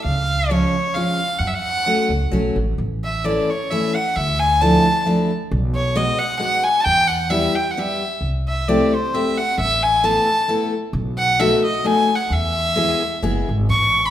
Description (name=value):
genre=musette waltz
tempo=132 BPM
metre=3/4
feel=rubato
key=unclear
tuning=A4 = 440 Hz
part: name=warm violin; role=melody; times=0.0-14.1 s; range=C5 to C#6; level=-19 LUFS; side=equal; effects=none
part: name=upright bass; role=bass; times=0.0-14.1 s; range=F#1 to F#2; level=-23 LUFS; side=equal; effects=none
part: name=picked steel-string acoustic guitar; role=accompaniment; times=0.5-13.5 s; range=E3 to A4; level=-21 LUFS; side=left 1 dB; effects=none
room=wet recital hall reverb, RT60 1.6 s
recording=minimal, uncompressed stereo recording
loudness=-16 LUFS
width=side -11 dB against mid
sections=0.0-2.8 A section; 2.8-14.1 B section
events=none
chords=0.1 C#; 1.4 F#m; 2.8 A; 4.2 Dmadd9; 5.5 B6; 6.9 Em; 8.2 C6; 9.6 Asus2; 10.9 B7; 12.3 E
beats=| 0.06 0.51 0.96 | 1.41 1.86 2.33 | 2.79 3.25 3.71 | 4.17 4.62 5.07 | 5.52 5.97 6.42 | 6.87 7.32 7.78 | 8.24 8.70 9.15 | 9.60 10.05 10.50 | 10.95 11.40 11.86 | 12.31 12.77 13.24 | 13.71